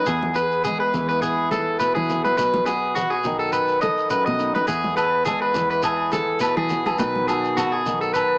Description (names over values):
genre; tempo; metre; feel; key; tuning
highlife guitar band; 104 BPM; 4/4; swing 54% on 16ths; E major; A4 = 440 Hz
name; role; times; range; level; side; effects
flamenco guitar; accompaniment; 0.0-8.4 s; E2 to A4; -30 LUFS; equal; none
electric guitar at the edge of break-up; arpeggios; 0.0-8.4 s; F#4 to D#5; -23 LUFS; equal; spring reverb, slapback echo
fingered electric bass; bass; 0.1-8.4 s; B1 to E3; -34 LUFS; equal; none
shekere; percussion; 0.1-8.3 s; none; -38 LUFS; equal; none
congas; percussion; 0.2-8.0 s; none; -35 LUFS; equal; none
agogo bells; percussion; 5.0-8.3 s; none; -31 LUFS; equal; none
room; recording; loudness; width
wet studio reverb, RT60 0.5 s; small speaker sound; -22 LUFS; mono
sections
0.0-8.4 A section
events
none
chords
0.1 E; 2.4 B; 4.7 E; 7.0 B